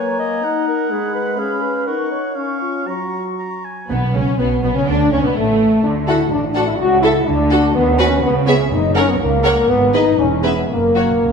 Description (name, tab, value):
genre	quick classical-period movement for symphony orchestra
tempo	124 BPM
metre	2/4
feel	rubato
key	F# major, B minor from 3.9 s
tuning	A4 = 440 Hz
part	clear oboe	second line	0.0-3.9 s	E#5 to A#5	-26 LUFS	right 2 dB	none
part	dark clarinet	second line	0.0-3.6 s	E#4 to D#5	-24 LUFS	equal	none
part	small flute group	second line	0.0-3.6 s	A#5 to C#6	-27 LUFS	right 1 dB	none
part	mellow French horn section	sustained chords	0.0-11.3 s	F#3 to F#4	-17 LUFS	left 2 dB	none
part	warm studio violin section	melody	3.9-11.1 s	A3 to F#5	-27 LUFS	left 4 dB	none
part	warm studio violin section	second line	3.9-11.1 s	A3 to C#5	-24 LUFS	left 2 dB	none
part	dark studio viola section	accompaniment	3.9-11.1 s	A3 to A#4	-23 LUFS	right 3 dB	none
part	warm studio cello section	bass	3.9-11.3 s	C#2 to D#3	-23 LUFS	right 5 dB	none
part	warm studio double bass section	bass	3.9-11.3 s	E1 to D#2	-22 LUFS	right 4 dB	none
part	timpani	percussion	3.9-4.6, 8.7-11.3 s	F#2 to B2	-24 LUFS	equal	none
room	wet scoring stage reverb, RT60 1.6 s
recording	minimal, uncompressed stereo recording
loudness	-14 LUFS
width	side -6 dB against mid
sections	0.0-3.9 A section; 3.9-11.3 B section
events	timpani fill 10.7-11.3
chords	0.4 D#m; 0.9 G#m7; 1.4 C#7; 1.9 D#m7; 2.4 C#; 2.9 F#; 3.9 Bsus2; 4.9 Bmadd9; 5.4 N.C.; 5.8 D; 6.8 A/C#; 7.3 D; 7.8 B/D#; 8.2 C#m; 8.7 F#; 9.7 G#m; 10.2 E; 10.7 F#